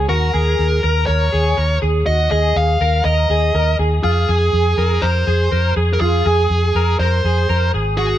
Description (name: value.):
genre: jangly indie pop.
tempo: 122 BPM.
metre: 4/4.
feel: straight.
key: unclear.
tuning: A4 = 440 Hz.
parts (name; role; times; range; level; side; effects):
twelve-string electric guitar; arpeggios; 0.0-8.2 s; F4 to Bb4; -20 LUFS; left 1 dB; ensemble chorus.
vintage muted fingered electric bass; bass; 0.0-8.1 s; Ab1 to F2; -17 LUFS; equal; none.
bluesy overdriven lead guitar; melody; 0.1-8.2 s; Ab4 to F5; -19 LUFS; right 1 dB; distortion.
room: light reverb.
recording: dark, warm production.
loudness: -14 LUFS.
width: side -12 dB against mid.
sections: 0.0-8.2 A section.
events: none.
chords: 0.1 Ebm; 4.0 Fm.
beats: | 0.10 0.59 1.08 1.57 | 2.07 2.56 3.05 3.54 | 4.04 4.53 5.03 5.52 | 6.01 6.51 7.00 7.50 | 7.99.